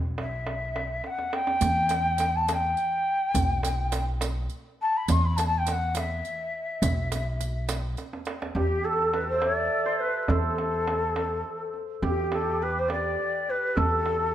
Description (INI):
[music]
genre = Persian modal ensemble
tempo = 69 BPM (dotted quarters)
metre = 6/8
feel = straight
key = E avaz esfahan, E dastgah shur from 8.6 s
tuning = A4 = 440 Hz
[part]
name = upright bass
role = bass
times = 0.0-14.3 s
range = B1 to E2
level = -30 LUFS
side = equal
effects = none
[part]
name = breathy ney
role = melody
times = 0.2-14.3 s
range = G4 to C6+50c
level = -27 LUFS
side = left 2 dB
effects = none
[part]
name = tombak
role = percussion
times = 0.2-14.2 s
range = none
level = -30 LUFS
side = right 2 dB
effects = none
[part]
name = riq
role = percussion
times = 1.6-8.3 s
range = none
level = -36 LUFS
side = right 6 dB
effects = none
[part]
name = santur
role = second line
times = 8.6-14.3 s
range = G4 to E5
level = -29 LUFS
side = right 3 dB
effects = none
[sound]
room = moderate recital hall reverb, RT60 1.4 s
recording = none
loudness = -24 LUFS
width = side -11 dB against mid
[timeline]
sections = 0.0-8.6 A section; 8.6-14.3 B section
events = drum fill 1.0-1.6, 8.0-8.6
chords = none